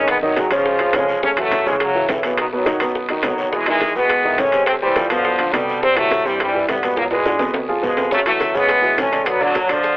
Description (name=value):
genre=latin, salsa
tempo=209 BPM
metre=4/4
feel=straight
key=unclear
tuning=A4 = 440 Hz
part: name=brilliant trombone section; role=melody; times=0.0-10.0 s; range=B2 to C#4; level=-18 LUFS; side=equal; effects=none
part: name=warm upright piano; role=accompaniment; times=0.0-9.9 s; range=B2 to D#5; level=-21 LUFS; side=right 1 dB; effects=none
part: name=upright bass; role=bass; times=0.0-10.0 s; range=G1 to A2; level=-39 LUFS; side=equal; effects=none
part: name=bongos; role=percussion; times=0.1-10.0 s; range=none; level=-27 LUFS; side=left 1 dB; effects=none
part: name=congas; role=percussion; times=0.1-10.0 s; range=none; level=-33 LUFS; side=left 1 dB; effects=none
part: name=guiro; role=percussion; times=0.1-10.0 s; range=none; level=-33 LUFS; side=left 2 dB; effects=none
part: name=timbales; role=percussion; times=0.1-9.8 s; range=none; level=-24 LUFS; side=right 1 dB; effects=none
part: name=maracas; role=percussion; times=8.1-10.0 s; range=none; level=-45 LUFS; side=right 2 dB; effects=none
room=moderate plate reverb, RT60 2.5 s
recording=telephone sound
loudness=-15 LUFS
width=side -20 dB against mid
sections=0.0-10.0 A section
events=drum fill 7.0-8.1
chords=0.1 G#5; 0.7 C#; 1.2 F#m7; 2.4 B; 3.5 Emaj7; 4.7 Dm7; 5.8 Cmaj7; 7.0 G#m7b5; 7.5 C#7; 8.1 F#m7; 9.3 Bm7